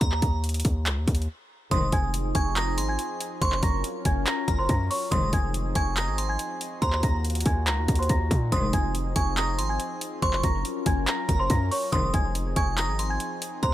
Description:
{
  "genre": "hip hop, trap",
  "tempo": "141 BPM",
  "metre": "4/4",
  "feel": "half-time",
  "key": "F phrygian",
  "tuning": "A4 = 440 Hz",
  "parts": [
    { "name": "glassy synth bell", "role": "second line", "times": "0.0-13.7 s", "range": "Bb5 to Eb6", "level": "-34 LUFS", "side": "right 4 dB", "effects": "chorus, phaser, tape echo" },
    { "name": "hard-hitting 808-style bass", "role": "bass", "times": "0.0-13.7 s", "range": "F1 to Bb2", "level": "-27 LUFS", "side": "equal", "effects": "none" },
    { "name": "trap drum kit", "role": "drums", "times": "0.0-13.7 s", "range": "handclaps, hi-hat, kick drum", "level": "-27 LUFS", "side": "equal", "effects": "none" },
    { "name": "worn celesta", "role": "melody", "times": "1.7-13.7 s", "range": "C5 to Bb6", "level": "-30 LUFS", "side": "equal", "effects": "low-pass filter, tape echo" },
    { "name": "sweeping resonant pad", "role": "sustained chords", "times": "1.7-13.7 s", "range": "Eb3 to Bb4", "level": "-34 LUFS", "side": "left 1 dB", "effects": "chorus, phaser" },
    { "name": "dark symphonic string section", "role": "stabs", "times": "1.7-2.1, 5.1-5.5, 8.5-8.9, 11.9-12.3 s", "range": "C2 to Eb3", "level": "-34 LUFS", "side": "left 2 dB", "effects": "none" }
  ],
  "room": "little or no reverb",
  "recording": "none",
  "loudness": "-23 LUFS",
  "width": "side -14 dB against mid",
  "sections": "0.0-1.7 A section; 1.7-13.7 B section",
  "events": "break 0.0-1.7",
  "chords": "0.0 Eb5; 1.7 Fm7; 3.4 Gbmaj7; 5.1 Fm7; 6.8 Ebmadd9; 8.5 Fm7; 10.2 Gbmaj7; 11.9 Fm7"
}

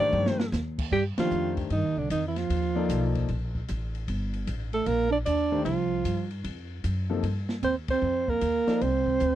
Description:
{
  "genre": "modal jazz",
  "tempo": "152 BPM",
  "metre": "4/4",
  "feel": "swing 65% on 8ths",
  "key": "C dorian",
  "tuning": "A4 = 441 Hz",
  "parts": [
    { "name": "mellow alto saxophone", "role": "melody", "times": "0.0-9.4 s", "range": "D4 to D5", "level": "-27 LUFS", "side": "equal", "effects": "none" },
    { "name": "warm concert grand piano", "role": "accompaniment", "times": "0.0-8.8 s", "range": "C3 to D5", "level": "-30 LUFS", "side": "left 7 dB", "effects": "none" },
    { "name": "open jazz drum kit", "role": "drums", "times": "0.0-9.3 s", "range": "crash cymbal, hi-hat, kick drum, ride cymbal, snare drum, toms", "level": "-36 LUFS", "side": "equal", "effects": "none" },
    { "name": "upright bass", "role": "bass", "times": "0.1-9.4 s", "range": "G1 to G2", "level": "-30 LUFS", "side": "equal", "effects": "none" },
    { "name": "breathy bass clarinet", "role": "second line", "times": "0.9-9.4 s", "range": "D3 to D4", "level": "-29 LUFS", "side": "right 10 dB", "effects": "none" }
  ],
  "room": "little or no reverb",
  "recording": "dry, close 1970s-style studio recording",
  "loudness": "-25 LUFS",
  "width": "side -12 dB against mid",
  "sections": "0.9-9.4 A section",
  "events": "drum fill 0.0-0.5; band accent 1.1, 7.8",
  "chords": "0.0 Cmadd9; 0.9 Cm11"
}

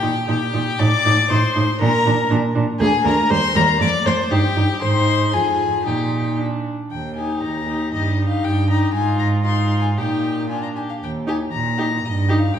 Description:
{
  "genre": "quick classical-period movement for string quartet",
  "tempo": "118 BPM",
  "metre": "2/4",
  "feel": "straight",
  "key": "Eb major",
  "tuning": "A4 = 442 Hz",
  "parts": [
    { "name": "rich violin", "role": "melody", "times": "0.0-12.6 s", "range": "Eb5 to D6", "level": "-23 LUFS", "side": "left 7 dB", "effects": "none" },
    { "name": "rich violin", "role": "second line", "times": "0.0-12.4 s", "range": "F4 to D5", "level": "-24 LUFS", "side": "left 2 dB", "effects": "none" },
    { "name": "warm viola", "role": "accompaniment", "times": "0.0-12.4 s", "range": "G3 to F4", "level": "-24 LUFS", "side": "equal", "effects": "none" },
    { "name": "rich cello", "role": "bass", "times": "0.0-12.6 s", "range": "D2 to Bb2", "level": "-20 LUFS", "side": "right 2 dB", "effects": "none" }
  ],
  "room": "wet recital hall reverb, RT60 1.6 s",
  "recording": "heard from further back in the room",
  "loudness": "-17 LUFS",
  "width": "side -9 dB against mid",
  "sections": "0.0-6.9 A section; 6.9-12.6 B section",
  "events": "none",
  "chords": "0.0 Eb/Bb; 0.8 Cm69/A; 1.8 Bb; 2.8 Bb7; 3.3 Eb; 3.8 Bb/F; 4.3 Eb/G; 4.8 Ab; 5.3 Fm; 5.9 Eb/Bb; 6.4 Bb; 6.9 Eb; 7.9 Eb/G; 8.9 Fm7/Ab; 10.0 Eb/Bb; 10.5 Bb; 11.0 Eb; 12.0 Eb/G"
}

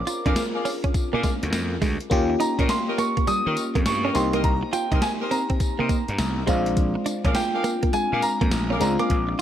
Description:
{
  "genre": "R&B, new jack swing",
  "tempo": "103 BPM",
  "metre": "4/4",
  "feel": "swing 65% on 16ths",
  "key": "unclear",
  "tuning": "A4 = 440 Hz",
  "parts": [
    { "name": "warm concert grand piano", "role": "melody", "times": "0.0-9.4 s", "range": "G5 to Eb6", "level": "-27 LUFS", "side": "right 1 dB", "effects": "none" },
    { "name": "FM electric piano", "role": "accompaniment", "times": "0.0-9.4 s", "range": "Ab3 to Bb4", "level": "-27 LUFS", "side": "left 2 dB", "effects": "chorus, phaser" },
    { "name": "direct-recorded clean electric guitar", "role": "riff", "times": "0.1-9.4 s", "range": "G3 to F4", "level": "-29 LUFS", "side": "right 6 dB", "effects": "analog chorus" },
    { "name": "gated 80s digital drum machine", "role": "drums", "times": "0.1-9.4 s", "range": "hi-hat, kick drum, snare drum, tambourine", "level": "-25 LUFS", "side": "equal", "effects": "gated reverb, gated reverb snare" },
    { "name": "warm horn section", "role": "stabs", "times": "0.3-9.2 s", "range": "G4 to F5", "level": "-32 LUFS", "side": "left 1 dB", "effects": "digital delay" },
    { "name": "gritty slap bass", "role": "bass", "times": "0.3-9.3 s", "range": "Bb1 to Eb3", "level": "-27 LUFS", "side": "equal", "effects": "overdrive" }
  ],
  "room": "light reverb, digital ambience",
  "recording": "none",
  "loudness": "-20 LUFS",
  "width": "side -10 dB against mid",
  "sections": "0.0-9.4 A section",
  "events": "none",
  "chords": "0.0 Bb7; 2.1 Eb7; 4.1 Cm7; 6.5 Bb7"
}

